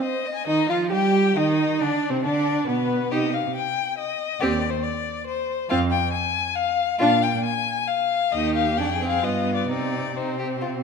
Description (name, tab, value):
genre	quick classical-period movement for string quartet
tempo	136 BPM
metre	3/4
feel	rubato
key	C minor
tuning	A4 = 440 Hz
part	rich violin	melody	0.0-10.8 s	B4 to Ab5	-24 LUFS	left 9 dB	none
part	rich violin	second line	0.0-10.7 s	B3 to Eb5	-29 LUFS	left 3 dB	none
part	clear viola	accompaniment	0.0-10.8 s	B3 to G4	-25 LUFS	right 3 dB	none
part	rich cello	bass	0.5-10.8 s	Eb2 to G3	-27 LUFS	right 5 dB	none
room	moderate recital hall reverb, RT60 1.8 s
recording	none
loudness	-21 LUFS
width	side -5 dB against mid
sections	0.5-10.8 A section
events	none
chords	0.5 Ebadd9; 1.8 Bm; 3.1 Cm; 4.4 Cm/Eb; 5.7 Fm; 7.0 Bb7; 8.3 Eb; 8.8 Ddim/F; 9.2 G7; 9.7 Cm